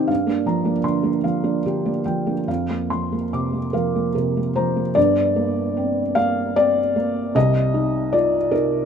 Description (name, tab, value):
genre	neoclassical minimalist piano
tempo	74 BPM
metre	3/4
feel	uneven beats, rubato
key	G minor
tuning	A4 = 440 Hz
part	felt-muted upright piano	solo	0.0-8.9 s	G1 to D6	-18 LUFS	equal	none
room	light reverb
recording	minimal, uncompressed stereo recording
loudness	-18 LUFS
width	side -7 dB against mid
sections	0.0-5.0 A section; 5.0-8.9 B section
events	none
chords	0.1 Gm7; 2.5 Fsus4; 5.0 Gm; 7.3 Cm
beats	| 0.09 0.86 1.66 | 2.48 3.31 4.14 | 4.96 5.76 6.55 | 7.35 8.13